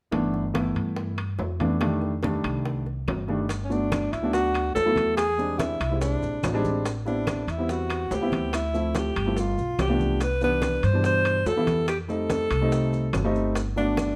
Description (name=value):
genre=Afro-Cuban jazz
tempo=143 BPM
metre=4/4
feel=straight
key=G major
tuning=A4 = 440 Hz
part: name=dark upright piano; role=accompaniment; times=0.1-14.1 s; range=B2 to E4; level=-30 LUFS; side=equal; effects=none
part: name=upright bass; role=bass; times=0.1-14.1 s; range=G1 to G2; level=-31 LUFS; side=equal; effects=none
part: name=bongos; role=percussion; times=0.1-14.2 s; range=none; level=-40 LUFS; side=equal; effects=none
part: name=congas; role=percussion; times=0.1-14.2 s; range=none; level=-36 LUFS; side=equal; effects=none
part: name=timbales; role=percussion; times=0.1-14.2 s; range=none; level=-37 LUFS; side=equal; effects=none
part: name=claves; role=percussion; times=0.5-14.2 s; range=none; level=-45 LUFS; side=equal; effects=none
part: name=maracas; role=percussion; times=3.5-14.2 s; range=none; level=-49 LUFS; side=equal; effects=none
part: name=clear alto saxophone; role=melody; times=3.6-14.2 s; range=C#4 to C5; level=-29 LUFS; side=equal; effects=none
room=moderate large studio reverb, RT60 0.9 s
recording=none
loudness=-25 LUFS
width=mono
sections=0.1-3.5 A section; 3.5-14.2 B section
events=none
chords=0.1 G6; 1.8 F13; 3.5 Gmaj7; 5.2 E7alt; 6.9 Am9; 8.5 Dm9; 9.4 G7; 10.2 Cmaj9; 11.9 F9; 13.6 Gmaj7